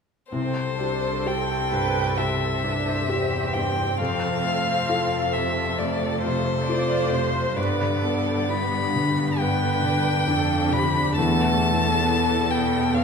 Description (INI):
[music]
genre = cinematic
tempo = 67 BPM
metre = 4/4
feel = rubato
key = unclear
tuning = A4 = 440 Hz
[part]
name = rich violin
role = melody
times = 0.3-13.0 s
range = C5 to B5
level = -25 LUFS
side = left 2 dB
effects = none
[part]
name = felt-muted upright piano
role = accompaniment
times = 0.3-13.0 s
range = C2 to G4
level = -27 LUFS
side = left 1 dB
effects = none
[part]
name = rich symphonic viola section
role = accompaniment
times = 0.3-13.0 s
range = A3 to D5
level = -29 LUFS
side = right 2 dB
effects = none
[part]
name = concert harp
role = arpeggios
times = 0.3-13.0 s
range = E2 to A5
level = -28 LUFS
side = left 4 dB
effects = none
[part]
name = rich symphonic cello section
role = bass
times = 0.3-13.0 s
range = C2 to G2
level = -30 LUFS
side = right 4 dB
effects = none
[sound]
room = wet recital hall reverb, RT60 1.5 s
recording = recorded in a church or concert hall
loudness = -21 LUFS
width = side -6 dB against mid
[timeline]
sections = 0.3-13.0 A section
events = none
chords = 0.3 C; 4.0 F; 7.6 G; 11.2 Esus4